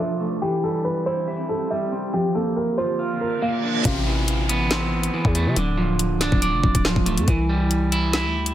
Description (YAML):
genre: hip hop, drill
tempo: 140 BPM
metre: 4/4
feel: half-time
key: A minor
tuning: A4 = 440 Hz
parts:
  - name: dark concert grand piano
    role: melody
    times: 0.0-3.6 s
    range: G4 to F5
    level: -25 LUFS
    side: equal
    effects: ping-pong delay
  - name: electric guitar at the edge of break-up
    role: accompaniment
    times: 0.0-8.5 s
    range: C3 to F5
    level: -24 LUFS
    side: right 2 dB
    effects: none
  - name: granular cloud pad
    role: sustained chords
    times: 0.0-3.8 s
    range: D3 to A4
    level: -32 LUFS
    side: equal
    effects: built-in reverb
  - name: reverse cymbal and downlifter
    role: sound effects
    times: 3.3-7.3 s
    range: none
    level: -31 LUFS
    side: right 2 dB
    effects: none
  - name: growling 808-style bass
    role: bass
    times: 3.9-8.5 s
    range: C1 to C3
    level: -23 LUFS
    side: equal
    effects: none
  - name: drill drum kit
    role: drums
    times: 3.9-8.5 s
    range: hi-hat, kick drum, snare drum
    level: -22 LUFS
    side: left 1 dB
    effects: overdrive
room: light reverb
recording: low-pass filter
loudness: -19 LUFS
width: side -12 dB against mid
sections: 0.0-3.9 A section; 3.9-8.5 B section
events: filter sweep 0.0-3.9; reverse cymbal 3.3-3.9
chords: 0.4 C; 2.1 Bb; 3.9 Amadd9; 5.6 Dm; 7.3 C